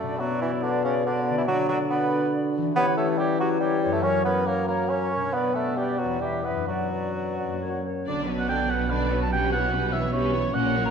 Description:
classical; 126-148 BPM; 3/4; rubato; B minor; A4 = 440 Hz
mellow clarinet; second line; 0.0-8.1 s; F#4 to B4; -34 LUFS; left 2 dB
mellow cor anglais; second line; 0.0-10.9 s; C#4 to A5; -30 LUFS; right 3 dB
silver concert flute; second line; 0.0-8.1 s; C#5 to E5; -33 LUFS; equal
clear bassoon; accompaniment; 0.0-7.8 s; C#3 to C#4; -27 LUFS; right 2 dB
mellow French horn section; sustained chords; 0.0-7.7 s; D3 to B3; -28 LUFS; left 2 dB
concert harp; arpeggios; 0.0-10.9 s; E2 to C#5; -32 LUFS; left 7 dB
rich symphonic violin section; melody; 8.1-10.9 s; A#4 to D5; -36 LUFS; left 2 dB
rich symphonic violin section; second line; 8.1-10.9 s; A#3 to D4; -31 LUFS; left 4 dB
rich symphonic viola section; accompaniment; 8.1-10.9 s; D3 to A#3; -31 LUFS; right 4 dB
rich symphonic cello section; bass; 8.1-10.9 s; A#2 to B2; -31 LUFS; right 4 dB
rich symphonic double bass section; bass; 8.1-10.9 s; A#1 to B1; -30 LUFS; right 2 dB
wet scoring stage reverb, RT60 1.7 s; -22 LUFS; side -6 dB against mid
0.0-8.1 A section; 8.1-10.9 B section
0.2 Bm; 1.5 Bm/D; 2.8 C#m7b5/E; 4.0 F#; 5.3 Bm; 6.2 Em; 6.7 Bm/F#; 7.6 F#; 8.1 Bm; 9.3 C#m7b5/B

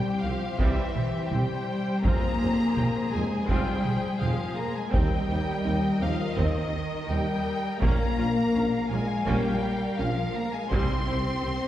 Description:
cinematic, epic orchestral film score; 83 BPM; 4/4; straight; F minor; A4 = 440 Hz
warm symphonic violin section; melody; 0.0-11.7 s; Eb5 to C6; -34 LUFS; left 2 dB
warm symphonic violin section; second line; 0.0-11.7 s; G4 to F5; -35 LUFS; left 2 dB
mellow French horn section; sustained chords; 0.0-11.7 s; Eb3 to C4; -31 LUFS; left 3 dB
rich symphonic cello section; bass; 0.0-11.7 s; Eb3 to C4; -32 LUFS; equal
rich symphonic viola section; accompaniment; 0.2-11.5 s; G3 to G5; -36 LUFS; equal
clear symphonic double bass section; bass; 0.2-11.5 s; Bb1 to F2; -33 LUFS; right 2 dB
clear tuba; bass; 0.2-11.6 s; F1 to Eb2; -35 LUFS; right 2 dB
taiko ensemble; drums; 0.6-11.4 s; -29 LUFS; right 1 dB
timpani; percussion; 10.7-11.7 s; C3; -35 LUFS; equal
wet scoring stage reverb, RT60 1.8 s; heard from further back in the room; -24 LUFS; side -12 dB against mid
0.0-11.7 A section
0.0 C; 2.0 Fmadd9; 4.9 Eb6; 7.8 Bbm; 10.7 C5

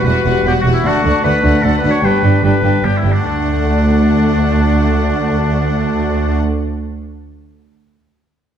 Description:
cinematic; 151 BPM; 3/4; straight; D major; A4 = 441 Hz
rich studio violin section; melody; 0.0-6.4 s; F#5 to G5; -26 LUFS; left 6 dB
clear oboe; second line; 0.0-6.4 s; D4 to C#5; -19 LUFS; left 1 dB
clear symphonic violin section; second line; 0.0-6.4 s; D4 to F#4; -21 LUFS; left 3 dB
clear symphonic viola section; accompaniment; 0.0-6.4 s; G3 to A3; -21 LUFS; left 2 dB
clear symphonic double bass section; bass; 0.1-6.4 s; E1 to D2; -17 LUFS; right 2 dB
rich symphonic cello section; bass; 0.1-6.4 s; D2 to G2; -18 LUFS; right 2 dB
moderate scoring stage reverb, RT60 1.6 s; dark, warm production; -12 LUFS; side -8 dB against mid
0.0-3.2 A section; 3.2-5.6 B section
0.0 Emadd9; 0.8 D; 2.0 G; 3.2 D

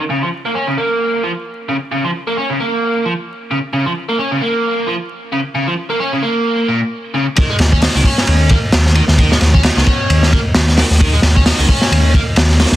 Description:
breakbeat, breaks; 132 BPM; 4/4; swing 56% on 16ths; A4 = 436 Hz
biting overdriven guitar; riff; 0.0-12.7 s; Bb2 to Eb4; -17 LUFS; equal; low-pass filter, digital delay
crunchy breakbeat drum kit; drums; 7.4-12.8 s; hi-hat, kick drum, ride cymbal, snare drum; -12 LUFS; equal
dark detuned saw bass; bass; 7.6-12.8 s; Db2 to Eb2; -13 LUFS; equal; tube saturation
moderate studio reverb, RT60 0.6 s; dense, heavily limited modern master, vinyl crackle; -12 LUFS; side -14 dB against mid
0.0-7.4 A section; 7.4-12.8 B section
drop 7.4-12.8
0.1 N.C.; 7.4 Eb5

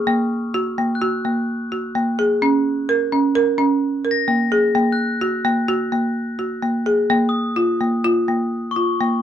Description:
contemporary instrumental, chamber music in an uneven meter; 128 BPM; 5/4; straight; A4 = 440 Hz
folk marimba with hard mallets; arpeggios; 0.0-9.2 s; Bb3 to Bb4; -17 LUFS; equal
glockenspiel with soft plastic mallets; texture; 1.0-9.2 s; Db6 to Bb6; -28 LUFS; left 5 dB
moderate studio ambience, RT60 0.5 s; dark, warm production, faint mains hum; -17 LUFS; side -9 dB against mid
0.0-9.2 A section
0.1 Gb/Bb; 2.4 Bbm; 4.8 Gb/Bb; 7.1 Ebsus2

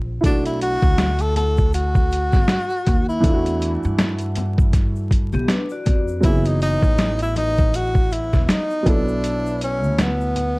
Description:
hip hop, jazz-hop; 80 BPM; 4/4; swing 58% on 16ths; B minor; A4 = 439 Hz
upright bass; bass; 0.0-10.6 s; E1 to G2; -23 LUFS; equal
dark upright piano; accompaniment; 0.2-10.6 s; E3 to A4; -26 LUFS; right 2 dB; plate reverb
boom bap sampler-style drum kit; drums; 0.2-10.6 s; hi-hat, kick drum, snare drum; -18 LUFS; equal
egg shaker and congas; percussion; 0.2-10.6 s; -34 LUFS; left 4 dB
breathy tenor saxophone; melody; 0.3-10.6 s; B3 to A4; -23 LUFS; equal; plate reverb
vibraphone with medium mallets; second line; 5.3-6.2 s; B3 to D5; -26 LUFS; left 2 dB; tape echo
light reverb; dark, warm production, vinyl crackle; -17 LUFS; side -25 dB against mid
0.0-10.6 A section
0.2 Bm7; 3.2 Em9; 6.2 F#m9; 8.9 Bm7

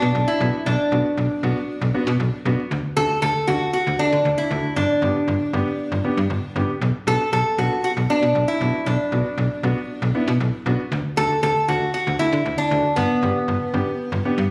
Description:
synth-pop; 117 BPM; 4/4; straight; B minor; A4 = 439 Hz
lap resonator guitar; melody; 0.0-14.5 s; B3 to A4; -24 LUFS; equal; analog delay
warm concert grand piano; accompaniment; 0.0-14.4 s; A3 to A4; -29 LUFS; equal
slap-like FM bass; bass; 0.0-14.5 s; G1 to D3; -24 LUFS; equal
moderate lush hall reverb, RT60 2.1 s; recorded on a phone in the room, studio reverb; -21 LUFS; mono
0.0-14.5 A section
0.0 Bm; 2.7 D; 4.8 G; 6.8 Bm; 10.9 D; 13.0 G

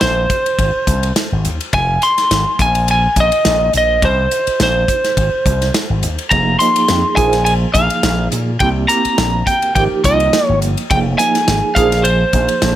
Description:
electric jazz fusion; 105 BPM; 4/4; swing 54% on 16ths; A4 = 440 Hz
lightly driven lead guitar; melody; 0.0-12.8 s; C5 to C6; -15 LUFS; equal
slap bass with an envelope filter; bass; 0.0-12.8 s; F1 to Bb2; -17 LUFS; left 1 dB
modern studio drum kit; drums; 0.0-12.8 s; hi-hat, kick drum, ride cymbal, snare drum; -19 LUFS; equal
tine electric piano; accompaniment; 6.3-12.8 s; F3 to Ab4; -19 LUFS; right 6 dB; overdrive, fast tremolo, phaser
light reverb, small room ambience; -12 LUFS; side -12 dB against mid
0.0-12.8 A section
0.0 Bbsus2; 0.6 Ab; 1.7 Fm; 2.6 Bbsus4; 4.0 Bbsus2; 5.2 Ab; 6.3 Fm7; 7.2 Bb7sus4; 8.6 C7; 9.8 Abmaj7; 10.9 Fm7; 11.8 Bb9sus4

